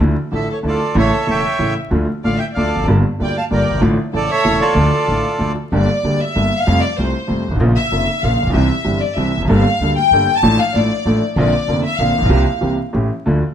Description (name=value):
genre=tango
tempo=190 BPM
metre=3/4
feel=rubato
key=D harmonic minor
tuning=A4 = 441 Hz
part: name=clear upright piano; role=accompaniment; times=0.0-13.4 s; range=E1 to A4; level=-17 LUFS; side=equal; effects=none
part: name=upright bass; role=bass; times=0.0-13.4 s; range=E1 to F2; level=-20 LUFS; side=equal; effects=none
part: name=rich studio violin section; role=second line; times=0.3-12.6 s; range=A4 to A5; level=-20 LUFS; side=left 3 dB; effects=none
part: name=bandoneon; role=melody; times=0.4-5.5 s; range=F4 to A5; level=-18 LUFS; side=right 2 dB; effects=none
room=moderate large studio reverb, RT60 0.9 s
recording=vinyl crackle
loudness=-14 LUFS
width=side -9 dB against mid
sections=0.0-5.7 A section; 5.7-13.3 B section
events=violin section solo 5.7-13.3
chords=0.0 Dmadd9; 1.0 A; 1.9 Dm; 2.9 Gm7; 3.8 Dm/A; 4.1 A; 4.8 Dm; 5.7 Gm; 6.7 Fadd9; 7.6 Bbm; 8.5 C; 9.5 Gmadd9; 10.4 Dm/A; 11.4 Bbadd9; 12.3 C7sus4; 12.6 C7; 13.0 A7